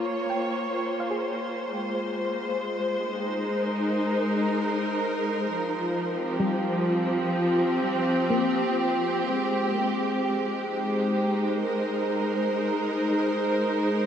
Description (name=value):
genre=ambient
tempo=63 BPM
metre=4/4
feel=straight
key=unclear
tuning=A4 = 440 Hz
part: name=clear studio string section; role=sustained chords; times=0.0-14.1 s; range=F3 to Db5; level=-24 LUFS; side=equal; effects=none
part: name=soft round pluck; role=arpeggios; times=0.0-12.9 s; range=G3 to G5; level=-34 LUFS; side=left 2 dB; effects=lush chorus, cassette tape, diffuse ambient delay
room=wet huge ambient reverb, RT60 8.1 s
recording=dark, warm production, nothing above 10.4 kHz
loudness=-24 LUFS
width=side -8 dB against mid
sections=0.0-9.3 A section; 9.3-14.1 B section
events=fade-in on synth pluck 0.0-9.3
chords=0.0 Bbm9; 1.7 Ab; 5.5 F9sus4; 9.3 Abmaj7